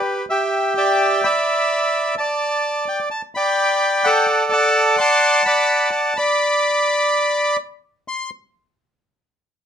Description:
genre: tango.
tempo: 128 BPM.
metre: 4/4.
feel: rubato.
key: unclear.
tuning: A4 = 440 Hz.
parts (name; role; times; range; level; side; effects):
bandoneon; solo; 0.0-8.3 s; G4 to C6; -16 LUFS; equal; none.
room: light reverb.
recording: none.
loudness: -16 LUFS.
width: side -8 dB against mid.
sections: 0.0-8.1 A section; 8.1-9.7 B section.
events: none.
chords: 0.0 G; 0.5 G69; 2.4 G; 4.3 D; 6.2 N.C..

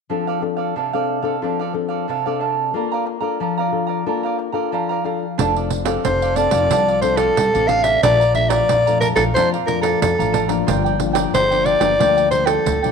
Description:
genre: samba and choro.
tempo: 91 BPM.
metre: 4/4.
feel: straight.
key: F major.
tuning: A4 = 440 Hz.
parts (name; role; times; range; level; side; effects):
cavaquinho; accompaniment; 0.1-12.9 s; D4 to Bb5; -23 LUFS; right 9 dB; none.
nylon-string guitar; accompaniment; 0.1-12.9 s; F2 to A4; -23 LUFS; left 11 dB; none.
upright bass; bass; 5.4-12.9 s; F1 to F2; -24 LUFS; equal; none.
pandeiro; percussion; 5.4-12.9 s; none; -24 LUFS; right 10 dB; none.
growling soprano saxophone; melody; 6.0-12.9 s; A4 to F5; -16 LUFS; left 1 dB; none.
room: moderate echo chamber reverb, RT60 1.3 s, small room ambience.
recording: 1960s-style stereo with parts hard left and right.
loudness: -16 LUFS.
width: side -6 dB against mid.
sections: 0.1-5.4 A section; 5.4-12.9 B section.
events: none.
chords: 0.1 F6; 2.7 Bbmaj7; 5.4 F6; 8.0 Bbmaj7; 10.7 Gm7.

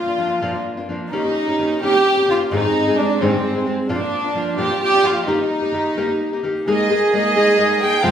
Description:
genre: mexican folk, mariachi.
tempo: 87 BPM (dotted quarters).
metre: 6/8.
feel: rubato.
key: Eb major.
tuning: A4 = 439 Hz.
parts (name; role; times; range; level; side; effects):
warm studio violin section; melody; 0.0-8.1 s; C4 to G5; -19 LUFS; right 1 dB; none.
nylon-string guitar; accompaniment; 0.0-8.1 s; F2 to Ab4; -20 LUFS; left 1 dB; none.
clear trumpet; second line; 6.7-8.1 s; Ab4 to C5; -20 LUFS; right 3 dB; none.
warm symphonic violin section; sustained chords; 6.7-8.1 s; Bb3 to F5; -28 LUFS; left 1 dB; none.
room: wet large studio reverb, RT60 1.3 s.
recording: band playing live in one room.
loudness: -16 LUFS.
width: side -9 dB against mid.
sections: 0.0-6.7 A section; 6.7-8.1 B section.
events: none.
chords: 0.0 Bb; 1.1 Eb7; 2.5 Ab; 3.9 Bb; 5.3 Eb; 6.7 Absus2.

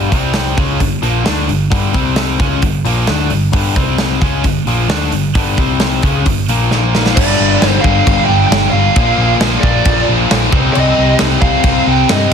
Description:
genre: hard rock.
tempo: 133 BPM.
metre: 4/4.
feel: straight.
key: G minor.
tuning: A4 = 440 Hz.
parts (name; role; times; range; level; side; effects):
crunchy overdriven guitar; riff; 0.0-12.3 s; G2 to D4; -18 LUFS; left 11 dB; none.
high-gain distorted guitar; riff; 0.0-12.3 s; G2 to D4; -19 LUFS; right 13 dB; distortion.
hollow-body short-scale picked electric bass; bass; 0.0-12.3 s; G1 to G2; -17 LUFS; equal; none.
big rock drum kit; drums; 0.1-12.2 s; crash cymbal, hi-hat, kick drum, snare drum; -16 LUFS; equal; none.
lead guitar through a small cranked amp; melody; 7.2-12.3 s; D5 to G5; -16 LUFS; right 3 dB; overdrive, tape echo.
heavy high-gain guitar; riff; 7.2-12.3 s; G2 to Eb4; -21 LUFS; left 2 dB; distortion.
room: light reverb.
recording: dense, heavily limited modern master.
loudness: -10 LUFS.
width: side -7 dB against mid.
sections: 0.0-7.2 A section; 7.2-12.3 B section.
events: drum fill 6.7-7.2.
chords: 0.1 C5; 0.6 Gm; 1.9 C5; 2.4 Gm; 3.8 C5; 4.2 Gm; 5.6 C5; 6.0 Gm; 6.7 Bb5; 7.2 Gm; 9.0 Bb; 10.5 Cm.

